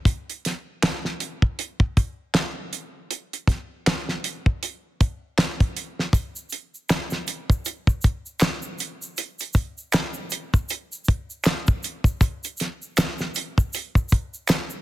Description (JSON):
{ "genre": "R&B", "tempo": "79 BPM", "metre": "4/4", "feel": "swing 59% on 16ths", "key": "none", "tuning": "none", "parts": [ { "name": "damped 70s drum kit", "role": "drums", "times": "0.1-14.7 s", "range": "handclaps, hi-hat, kick drum, snare drum", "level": "-21 LUFS", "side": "equal", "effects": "soft clipping on kick" }, { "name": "egg shaker and finger snaps", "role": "percussion", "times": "6.1-14.8 s", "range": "none", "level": "-32 LUFS", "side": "right 3 dB", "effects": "none" } ], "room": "light reverb, studio reverb", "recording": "dense, heavily limited modern master", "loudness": "-22 LUFS", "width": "side -16 dB against mid", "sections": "0.0-14.8 A section", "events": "none", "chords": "none" }